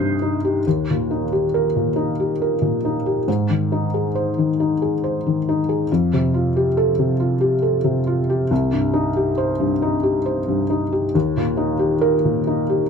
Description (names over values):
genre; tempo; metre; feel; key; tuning
neoclassical minimalist piano; 46 BPM (dotted quarters); 6/8; rubato; unclear; A4 = 440 Hz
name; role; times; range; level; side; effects
felt-muted upright piano; solo; 0.0-12.9 s; C2 to C7; -17 LUFS; left 1 dB; none
room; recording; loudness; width
light reverb; close, detailed microphones; -17 LUFS; side -6 dB against mid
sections
0.0-12.9 A section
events
none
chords
0.0 Cm; 0.7 Eb; 3.3 Ab; 5.9 Fadd9; 8.5 Cm; 11.1 Eb